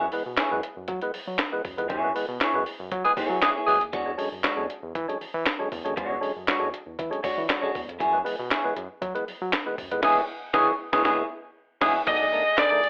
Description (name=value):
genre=funk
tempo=118 BPM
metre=4/4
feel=straight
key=unclear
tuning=A4 = 440 Hz
part: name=clean electric guitar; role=accompaniment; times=0.0-12.8 s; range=G#3 to D5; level=-30 LUFS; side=equal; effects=phaser
part: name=percussive tonewheel organ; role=stabs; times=0.0-12.8 s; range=B2 to D4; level=-33 LUFS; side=equal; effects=overdrive, stopped rotary speaker
part: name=round analog bass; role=bass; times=0.0-12.9 s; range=F#1 to F#3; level=-37 LUFS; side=equal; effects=none
part: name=breakbeat sampler-style drum kit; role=drums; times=0.1-12.9 s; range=crash cymbal, handclaps, hi-hat, kick drum, snare drum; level=-31 LUFS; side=equal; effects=none
part: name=growling tenor saxophone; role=second line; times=3.0-3.8, 10.0-12.9 s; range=G#4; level=-26 LUFS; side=equal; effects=none
part: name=nasal lead guitar with a parked wah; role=melody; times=12.1-12.9 s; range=D5 to D#5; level=-23 LUFS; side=equal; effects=overdrive
room=moderate studio reverb, RT60 0.8 s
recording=telephone sound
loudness=-26 LUFS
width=mono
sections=0.0-12.1 A section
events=band accent 1.9-3.9, 10.0-12.1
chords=0.0 F#9sus4; 3.9 E13; 8.0 F#9sus4; 12.1 B7#9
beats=0.38 0.89 1.39 | 1.90 2.41 2.92 3.43 | 3.94 4.44 4.95 5.46 | 5.97 6.48 6.99 7.49 | 8.00 8.51 9.02 9.53 | 10.04 10.54 11.05 11.56 | 12.07 12.58